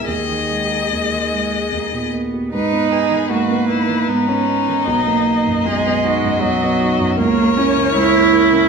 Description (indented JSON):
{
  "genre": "classical, slow romantic movement for piano quartet",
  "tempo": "70-80 BPM",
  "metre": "3/4",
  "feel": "rubato",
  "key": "G# minor",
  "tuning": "A4 = 439 Hz",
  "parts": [
    { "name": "clear violin", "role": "melody", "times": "0.0-8.7 s", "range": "D#4 to D#5", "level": "-21 LUFS", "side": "left 10 dB", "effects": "none" },
    { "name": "rich cello", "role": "second line", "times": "0.0-8.7 s", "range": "D#3 to E4", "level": "-17 LUFS", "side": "right 6 dB", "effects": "none" },
    { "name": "rich viola", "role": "accompaniment", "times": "0.0-8.7 s", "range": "G#4 to D#5", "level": "-25 LUFS", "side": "equal", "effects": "none" },
    { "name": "warm grand piano", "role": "accompaniment", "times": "0.0-8.7 s", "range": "B1 to G#4", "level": "-22 LUFS", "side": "equal", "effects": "none" }
  ],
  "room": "wet recital hall reverb, RT60 1.3 s",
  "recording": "none",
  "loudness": "-14 LUFS",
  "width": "side -5 dB against mid",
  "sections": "0.0-2.5 A section; 2.5-8.7 B section",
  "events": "none",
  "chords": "0.1 G#5/D#; 1.7 D#; 2.5 G#m; 4.9 B; 7.2 A#dim/C#"
}